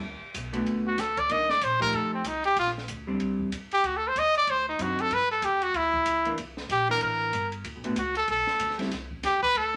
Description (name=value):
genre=jazz, small-group swing and bop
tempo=189 BPM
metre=4/4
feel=swing 61% on 8ths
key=unclear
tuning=A4 = 440 Hz
part: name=vintage hollow-body jazz guitar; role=accompaniment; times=0.0-8.9 s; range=D3 to G4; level=-33 LUFS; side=equal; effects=none
part: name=upright bass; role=bass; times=0.0-9.8 s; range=G1 to G2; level=-42 LUFS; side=equal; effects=none
part: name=open jazz drum kit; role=drums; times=0.0-9.8 s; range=hi-hat, kick drum, ride cymbal, snare drum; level=-42 LUFS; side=equal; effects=none
part: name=brilliant trumpet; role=melody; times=0.9-9.8 s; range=C4 to Eb5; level=-26 LUFS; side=equal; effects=none
room=wet studio reverb, RT60 0.6 s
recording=none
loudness=-27 LUFS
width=mono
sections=0.0-9.8 A section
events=none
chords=0.0 D6; 1.3 Cm9; 1.9 F9; 2.6 Bb69; 3.8 D7b9; 5.1 G5; 6.4 C9; 7.6 D5; 8.9 C